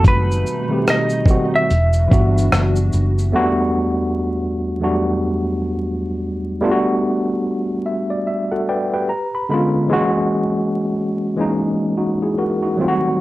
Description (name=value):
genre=lo-fi hip hop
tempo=73 BPM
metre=4/4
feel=swing 60% on 16ths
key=E minor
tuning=A4 = 441 Hz
part: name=semi-hollow electric guitar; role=melody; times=0.0-2.9 s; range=B4 to E5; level=-21 LUFS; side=right 1 dB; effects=low-pass filter, tape echo
part: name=tine electric piano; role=accompaniment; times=0.0-13.2 s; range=E2 to B5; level=-18 LUFS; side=equal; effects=overdrive, fast stereo tremolo, low-pass filter
part: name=hollow soft pad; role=sustained chords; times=0.0-3.3 s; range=B2 to F#4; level=-28 LUFS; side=equal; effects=ensemble chorus, low-pass filter
part: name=vintage muted fingered electric bass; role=bass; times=0.0-3.3 s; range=E1 to G1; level=-16 LUFS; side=equal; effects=none
part: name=dusty soul sampler-style drum kit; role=drums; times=0.0-3.3 s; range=hi-hat, kick drum, rim click, shaker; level=-16 LUFS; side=equal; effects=none
room=moderate studio reverb, RT60 0.6 s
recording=worn, warbling old tape, cassette tape, vinyl crackle, warbly pitch drift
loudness=-16 LUFS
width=side -17 dB against mid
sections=0.0-3.3 A section; 3.3-13.2 B section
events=tine electric piano fill 7.4-9.9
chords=0.0 B7b9b13/F#; 1.7 Em9; 3.3 Em11; 6.6 Gmaj9; 9.1 C#7b9; 9.9 F#9